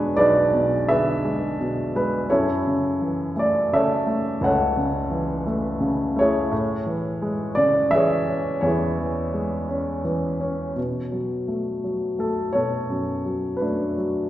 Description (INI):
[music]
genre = acoustic folk-pop ballad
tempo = 85 BPM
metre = 3/4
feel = straight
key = unclear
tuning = A4 = 442 Hz
[part]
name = dark baby grand piano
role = solo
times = 0.0-14.3 s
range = B1 to F#5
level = -20 LUFS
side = equal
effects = none
[sound]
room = wet recital hall reverb, RT60 1.4 s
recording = recorded in a church or concert hall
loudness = -20 LUFS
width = side -13 dB against mid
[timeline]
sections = 0.0-10.8 A section; 10.8-14.3 B section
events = none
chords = 0.0 E7; 2.3 F#m7; 6.5 Amaj7; 10.8 Bm7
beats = | 0.17 0.88 1.58 | 2.29 3.00 3.71 | 4.41 5.12 5.82 | 6.52 7.22 7.93 | 8.63 9.34 10.06 | 10.77 11.48 12.19 | 12.90 13.61